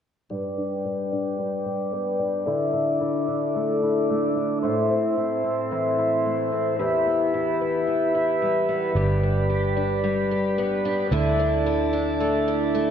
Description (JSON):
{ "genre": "dream pop", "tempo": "111 BPM", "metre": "4/4", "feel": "straight", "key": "G major", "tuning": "A4 = 438 Hz", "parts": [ { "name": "mellow tonewheel organ", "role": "sustained chords", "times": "0.3-12.9 s", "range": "E4 to D6", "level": "-25 LUFS", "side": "right 1 dB", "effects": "slow rotary speaker, low-pass filter" }, { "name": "picked twelve-string acoustic guitar", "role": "arpeggios", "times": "0.3-12.9 s", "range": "E2 to G4", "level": "-24 LUFS", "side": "left 2 dB", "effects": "wide subtle chorus, low-pass filter, digital delay" }, { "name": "vintage muted fingered electric bass", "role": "bass", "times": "8.9-12.9 s", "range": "G1 to D2", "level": "-26 LUFS", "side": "right 2 dB", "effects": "none" } ], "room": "wet scoring stage reverb, RT60 1.9 s", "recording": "dark, warm production", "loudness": "-21 LUFS", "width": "side -8 dB against mid", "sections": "0.3-12.9 A section", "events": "filter sweep 0.3-12.9", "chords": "0.3 G; 2.5 Dsus2; 4.6 Am; 6.8 Em; 9.0 G; 11.1 Dsus2" }